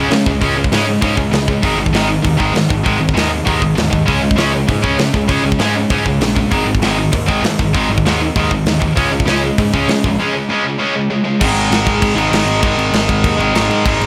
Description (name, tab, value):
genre	punk rock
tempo	197 BPM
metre	4/4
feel	straight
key	unclear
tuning	A4 = 440 Hz
part	tight distorted guitar	riff	0.0-14.1 s	Ab2 to Db4	-17 LUFS	equal	distortion
part	fuzz picked electric bass	bass	0.0-14.1 s	Ab1 to Db3	-22 LUFS	equal	overdrive
part	tight metal drum kit	drums	0.1-14.1 s	crash cymbal, hi-hat, kick drum, snare drum	-20 LUFS	equal	none
room	little or no reverb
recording	none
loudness	-15 LUFS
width	mono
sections	0.0-11.4 A section; 11.4-14.1 B section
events	break 10.2-11.4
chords	0.0 Db5; 1.6 Ab5; 4.1 Db5; 6.5 Ab5; 9.0 Db5; 11.4 Ab5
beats	0.10 | 0.41 0.71 1.02 1.32 | 1.63 1.93 2.24 2.54 | 2.85 3.15 3.46 3.76 | 4.07 4.37 4.68 4.98 | 5.29 5.59 5.90 6.20 | 6.51 6.82 7.12 7.43 | 7.73 8.04 8.35 8.65 | 8.96 9.26 9.57 9.88 | 10.18 10.49 10.79 11.10 | 11.41 11.71 12.02 12.32 | 12.62 12.93 13.23 13.54 | 13.84